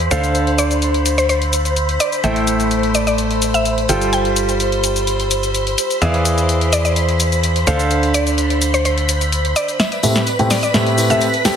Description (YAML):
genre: piano house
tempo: 127 BPM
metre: 4/4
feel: straight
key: A minor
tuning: A4 = 440 Hz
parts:
  - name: string machine, violins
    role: sustained chords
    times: 0.0-11.6 s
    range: B4 to B5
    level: -22 LUFS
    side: equal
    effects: ensemble chorus
  - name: bright concert grand piano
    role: riff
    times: 0.0-11.6 s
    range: A2 to G5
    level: -19 LUFS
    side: right 1 dB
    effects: low-pass filter, ping-pong delay
  - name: organ-like FM bass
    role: bass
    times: 0.0-11.6 s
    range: G1 to A2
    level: -20 LUFS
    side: equal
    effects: high-pass filter
  - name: house drum kit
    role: drums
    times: 0.0-11.6 s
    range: hi-hat, shaker, snare drum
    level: -21 LUFS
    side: left 2 dB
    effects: none
  - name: mallet-like synth pluck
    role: melody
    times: 0.1-11.5 s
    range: C5 to G5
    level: -22 LUFS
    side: left 1 dB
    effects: chorus, ping-pong delay
  - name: tambourine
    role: percussion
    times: 9.8-11.5 s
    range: none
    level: -28 LUFS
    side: left 1 dB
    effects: none
room: light reverb, digital ambience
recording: heavily compressed radio sound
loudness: -14 LUFS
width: side -8 dB against mid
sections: 0.0-9.8 A section; 9.8-11.6 B section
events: filter sweep on string machine 0.0-9.8; build-up 9.8-11.6; drum fill 9.8-11.6; filter sweep on grand piano 9.8-11.6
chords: 0.1 Dm7; 2.2 Am7; 3.9 G9sus4; 6.0 E7b9; 7.7 Dm7; 9.8 Am7